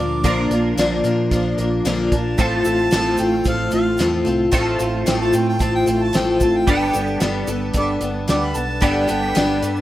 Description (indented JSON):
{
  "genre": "folk rock and heartland rock",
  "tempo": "112 BPM",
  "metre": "4/4",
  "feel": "straight",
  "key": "unclear",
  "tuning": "A4 = 440 Hz",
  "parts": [
    { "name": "warm harmonica", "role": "second line", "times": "0.0-9.8 s", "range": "F5 to D6", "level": "-25 LUFS", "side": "right 2 dB", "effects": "none" },
    { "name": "picked twelve-string acoustic guitar", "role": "accompaniment", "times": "0.0-9.8 s", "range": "A2 to Bb4", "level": "-20 LUFS", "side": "left 3 dB", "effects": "none" },
    { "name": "twelve-string electric guitar", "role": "riff", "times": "0.0-9.8 s", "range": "A2 to Bb4", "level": "-23 LUFS", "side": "right 3 dB", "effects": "ensemble chorus" },
    { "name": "hollow-body short-scale fingered electric bass", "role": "bass", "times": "0.0-9.8 s", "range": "G1 to Bb2", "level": "-26 LUFS", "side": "right 1 dB", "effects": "none" },
    { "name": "cloth-damped thuddy drum kit", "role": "drums", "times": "0.2-9.8 s", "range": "hi-hat, kick drum, snare drum", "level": "-22 LUFS", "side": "right 1 dB", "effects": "none" },
    { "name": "tube shaker", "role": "percussion", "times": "2.4-9.8 s", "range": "none", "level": "-37 LUFS", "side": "right 4 dB", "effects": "none" }
  ],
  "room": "light reverb",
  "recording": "rough home demo mix",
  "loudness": "-16 LUFS",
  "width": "side -14 dB against mid",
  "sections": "0.0-9.8 A section",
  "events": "harmonica solo 0.0-9.8",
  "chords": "0.0 Bb; 2.4 F/A; 6.7 Gadd9",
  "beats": "| 0.24 0.78 1.31 1.85 | 2.39 2.92 3.46 3.99 | 4.53 5.07 5.60 6.14 | 6.68 7.21 7.75 8.29 | 8.82 9.36"
}